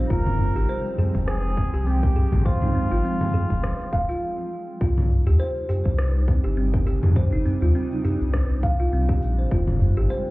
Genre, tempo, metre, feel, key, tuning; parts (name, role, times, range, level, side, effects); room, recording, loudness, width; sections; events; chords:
organic downtempo; 102 BPM; 4/4; swing 56% on 16ths; A4 = 440 Hz
granular cloud pad; sustained chords; 0.0-10.3 s; C3 to G5; -32 LUFS; equal; built-in reverb, sidechain pumping
kalimba; arpeggios; 0.0-10.2 s; C4 to F5; -28 LUFS; right 1 dB; tape echo
warm sub bass; bass; 0.0-10.1 s; Eb1 to F2; -22 LUFS; equal; sidechain pumping
trumpet with cup mute; melody; 0.1-4.2 s; F4 to Bb4; -31 LUFS; right 1 dB; tape echo
electronic cabasa, congas and rim click; drums; 0.1-10.3 s; -29 LUFS; left 1 dB
electronic kick drum; drums; 0.1-9.6 s; -24 LUFS; equal
udu; percussion; 0.4-9.9 s; -24 LUFS; equal
light reverb; heard muffled through a wall, club reverb, EQ; -20 LUFS; side -20 dB against mid
0.0-4.8 A section; 4.8-10.3 A section
stop 4.2-4.8
0.1 Fm; 4.8 Cm; 9.5 Fm